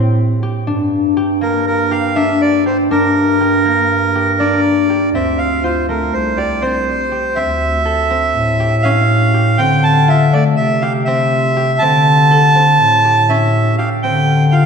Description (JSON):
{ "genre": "contemporary instrumental, chamber music in an uneven meter", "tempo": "242 BPM (eighths)", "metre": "9/8", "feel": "straight", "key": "G dorian", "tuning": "A4 = 439 Hz", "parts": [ { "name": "concert harp", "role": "arpeggios", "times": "0.0-14.7 s", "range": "A3 to A4", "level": "-18 LUFS", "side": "left 2 dB", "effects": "none" }, { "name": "mellow bass clarinet", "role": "bass", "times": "0.0-14.7 s", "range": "C2 to D3", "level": "-16 LUFS", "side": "left 1 dB", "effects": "none" }, { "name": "accordion", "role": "melody", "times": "1.4-14.7 s", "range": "Bb4 to A5", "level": "-15 LUFS", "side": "right 3 dB", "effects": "none" } ], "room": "wet church reverb, RT60 2.4 s", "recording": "recorded in a church or concert hall", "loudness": "-12 LUFS", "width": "side -6 dB against mid", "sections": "0.0-5.1 A section; 5.1-14.7 B section", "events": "none", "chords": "0.0 Am7; 0.7 Gm; 5.1 Dm7; 6.1 Am7/C; 7.4 D5; 8.4 A7; 9.6 Dm7; 10.6 Am7/C; 11.8 D5; 12.8 A7; 14.0 Dm7", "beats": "0.18 0.43 | 0.68 0.93 1.17 1.42 1.67 1.92 2.16 2.41 2.66 | 2.91 3.15 3.40 3.65 3.90 4.14 4.39 4.64 4.89 | 5.13 5.38 5.63 5.88 6.13 6.37 6.62 6.87 7.12 | 7.36 7.61 7.86 8.11 8.35 8.60 8.85 9.10 9.34 | 9.59 9.84 10.09 10.33 10.58 10.83 11.07 11.32 11.57 | 11.82 12.06 12.31 12.56 12.80 13.05 13.30 13.55 13.79 | 14.04 14.29 14.54" }